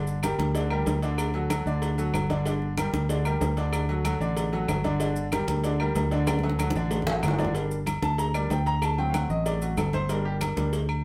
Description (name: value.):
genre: latin, salsa.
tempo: 189 BPM.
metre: 4/4.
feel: straight.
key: G harmonic minor.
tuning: A4 = 441 Hz.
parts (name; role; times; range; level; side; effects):
bright upright piano; accompaniment; 0.0-10.7 s; D3 to Bb5; -32 LUFS; equal; none.
fingered electric bass; bass; 0.0-11.0 s; G1 to D2; -30 LUFS; equal; none.
congas; percussion; 0.1-11.0 s; none; -36 LUFS; equal; none.
maracas; percussion; 0.1-10.9 s; none; -47 LUFS; equal; none.
claves; percussion; 0.2-11.0 s; none; -41 LUFS; equal; none.
cowbell and bongos; percussion; 0.2-10.9 s; none; -38 LUFS; equal; none.
timbales and agogo bells; percussion; 0.2-11.0 s; none; -36 LUFS; equal; none.
room: wet studio reverb, RT60 0.6 s.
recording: band playing live in one room.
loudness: -27 LUFS.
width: mono.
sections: 0.0-7.5 A section; 7.5-11.0 B section.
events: drum fill 6.3-7.5; upright piano solo 7.5-11.0.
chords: 0.0 Gm; 1.2 D; 2.5 Gm; 3.7 D; 5.0 Gm; 6.3 D; 7.5 Gm; 8.8 D7; 10.1 Gm.